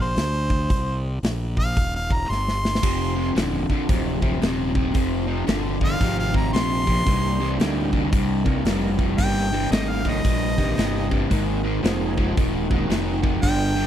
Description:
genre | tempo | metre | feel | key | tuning
blues rock power trio and southern rock | 113 BPM | 4/4 | swing 63% on 8ths | C minor | A4 = 441 Hz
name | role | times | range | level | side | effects
bright harmonica | melody | 0.0-13.9 s | C5 to C6 | -26 LUFS | equal | overdrive, slapback echo
fuzz fingered electric bass | bass | 0.0-13.9 s | D1 to D2 | -26 LUFS | equal | overdrive
big rock drum kit | drums | 0.2-13.6 s | crash cymbal, hi-hat, kick drum, snare drum | -24 LUFS | equal | none
crunchy overdriven guitar | riff | 2.8-13.9 s | C2 to F3 | -24 LUFS | left 1 dB | none
overdriven tonewheel organ | sustained chords | 7.0-13.8 s | Bb3 to Bb4 | -32 LUFS | right 6 dB | chorus vibrato, slow rotary speaker
room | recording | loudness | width
studio reverb | dry, close 1970s-style studio recording | -20 LUFS | side -10 dB against mid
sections
0.0-13.9 A section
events
drum fill 2.3-2.8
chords
0.0 Cm7; 11.3 Ab7

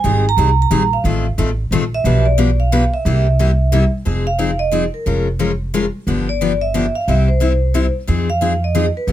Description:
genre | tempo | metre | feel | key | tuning
acoustic string swing (jazz manouche) | 179 BPM | 3/4 | swing 60% on 8ths | unclear | A4 = 436 Hz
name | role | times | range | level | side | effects
vibraphone with medium mallets | melody | 0.0-9.1 s | Bb4 to Bb5 | -19 LUFS | right 3 dB | none
picked steel-string acoustic guitar | accompaniment | 0.0-9.1 s | B2 to B4 | -19 LUFS | left 4 dB | none
upright bass | bass | 0.0-9.1 s | F1 to G2 | -17 LUFS | right 1 dB | none
room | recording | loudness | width
little or no reverb | close, detailed microphones | -14 LUFS | side -12 dB against mid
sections
0.0-4.1 A section; 4.1-9.1 B section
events
none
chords
0.0 Abmaj9; 1.0 F7/A; 2.1 G7/B; 3.1 C7; 4.1 Fm7; 5.1 Bbm7/F; 6.1 G7; 7.1 C; 8.1 Fm7

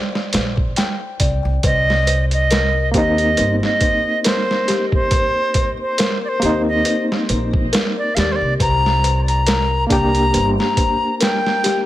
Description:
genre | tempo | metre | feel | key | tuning
trip hop | 69 BPM | 4/4 | swing 56% on 16ths | C minor | A4 = 439 Hz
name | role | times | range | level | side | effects
music box | arpeggios | 0.0-11.9 s | G4 to G5 | -25 LUFS | left 4 dB | ping-pong delay
trip hop sampler-style drum kit | drums | 0.2-11.9 s | hi-hat, kick drum, snare drum | -20 LUFS | right 1 dB | none
upright bass | bass | 0.3-10.6 s | G1 to Eb2 | -20 LUFS | equal | none
bright reedy wooden flute | melody | 1.7-11.8 s | C5 to Bb5 | -19 LUFS | equal | tape echo
barky reed electric piano | accompaniment | 2.9-11.9 s | Bb3 to G4 | -22 LUFS | equal | tremolo, vintage 12-bit sampler grit
room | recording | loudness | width
light reverb, small room ambience | none | -15 LUFS | side -14 dB against mid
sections
0.0-1.6 A section; 1.6-11.9 B section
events
none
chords
0.0 Gm; 1.6 Cm7; 8.6 Gm

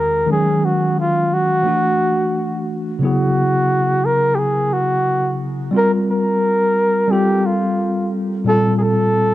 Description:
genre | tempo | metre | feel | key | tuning
hip hop | 88 BPM | 4/4 | swing 64% on 16ths | unclear | A4 = 440 Hz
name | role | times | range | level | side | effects
mellow flugelhorn | melody | 0.0-9.3 s | E#4 to A#4 | -17 LUFS | equal | cassette tape
tine electric piano | accompaniment | 0.0-9.3 s | E2 to A#4 | -18 LUFS | equal | medium stereo tremolo
room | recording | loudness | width
light reverb, small room ambience | home recording on cassette | -15 LUFS | side -15 dB against mid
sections
0.0-3.0 A section; 3.0-9.3 B section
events
none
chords
0.3 D#m7; 1.7 Dadd9; 3.0 C#m7; 5.7 C5; 7.1 Fadd9; 8.5 A#sus2

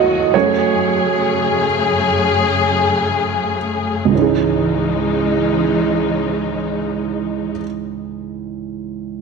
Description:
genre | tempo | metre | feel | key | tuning
pop | free time | none | none | C# minor | A4 = 439 Hz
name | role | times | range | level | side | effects
dark upright piano | accompaniment | 0.0-9.2 s | C#2 to D#5 | -18 LUFS | right 8 dB | none
warm studio string section | sustained chords | 0.0-7.6 s | D#2 to G#4 | -18 LUFS | left 4 dB | none
room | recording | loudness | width
moderate echo chamber reverb, RT60 2.1 s | 1960s-style stereo | -15 LUFS | side -4 dB against mid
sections
0.0-4.1 A section; 4.1-8.3 B section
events
slowing down 0.0-4.1; upright piano solo 0.0-4.1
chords
0.3 F#madd9; 4.1 C#madd9

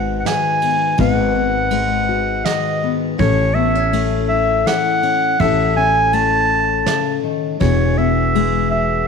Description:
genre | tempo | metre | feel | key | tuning
acoustic folk duo or small band | 82 BPM | 3/4 | straight | unclear | A4 = 440 Hz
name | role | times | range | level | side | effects
bright clarinet | melody | 0.0-9.1 s | C#5 to A5 | -18 LUFS | right 1 dB | none
fingerpicked steel-string acoustic guitar | accompaniment | 0.0-9.1 s | G#2 to B4 | -19 LUFS | left 9 dB | none
upright bass | bass | 0.0-9.0 s | E1 to A1 | -20 LUFS | right 2 dB | none
soft brush drum kit | drums | 0.3-8.5 s | kick drum, ride cymbal, snare drum | -28 LUFS | right 7 dB | none
room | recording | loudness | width
wet echo chamber reverb, RT60 1.6 s, small room ambience | 1960s-style stereo with parts hard left and right | -14 LUFS | side -5 dB against mid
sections
0.0-9.1 A section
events
none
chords
0.0 G#m7; 3.2 A; 7.6 Eadd9

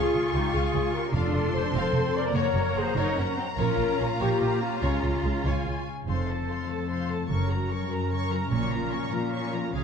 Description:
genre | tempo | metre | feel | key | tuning
cinematic | 98 BPM (dotted quarters) | 6/8 | straight | unclear | A4 = 440 Hz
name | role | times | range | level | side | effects
warm symphonic violin section | melody | 0.0-9.8 s | F5 to Db6 | -36 LUFS | left 2 dB | none
warm symphonic violin section | second line | 0.0-9.8 s | F4 to A5 | -39 LUFS | left 2 dB | none
warm symphonic viola section | accompaniment | 0.0-9.8 s | Ab3 to C5 | -34 LUFS | right 1 dB | none
warm French horn section | sustained chords | 0.0-9.8 s | C4 to D5 | -32 LUFS | left 6 dB | none
concert harp | arpeggios | 0.0-9.8 s | F2 to F5 | -34 LUFS | left 9 dB | none
clear trumpet section | stabs | 0.0-5.4 s | Db4 to D5 | -35 LUFS | equal | none
rich symphonic cello section | bass | 0.0-9.8 s | F2 to F4 | -32 LUFS | right 2 dB | none
warm symphonic double bass section | bass | 0.1-9.8 s | F1 to Db2 | -29 LUFS | right 3 dB | none
timpani | percussion | 1.1-1.7 s | F2 | -34 LUFS | equal | none
clear oboe | second line | 6.1-9.8 s | Ab4 to Bb4 | -39 LUFS | right 1 dB | none
warm clarinet | second line | 6.1-9.8 s | C4 to F4 | -37 LUFS | left 8 dB | none
room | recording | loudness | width
moderate scoring stage reverb, RT60 1.8 s | dark, warm production, nothing above 10.4 kHz | -24 LUFS | side -6 dB against mid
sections
0.0-6.1 A section; 6.1-9.8 B section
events
none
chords
0.0 Db; 1.1 F; 2.4 Gb; 3.6 Bbm; 4.8 Db; 6.1 F; 7.3 Gb; 8.5 Bbm

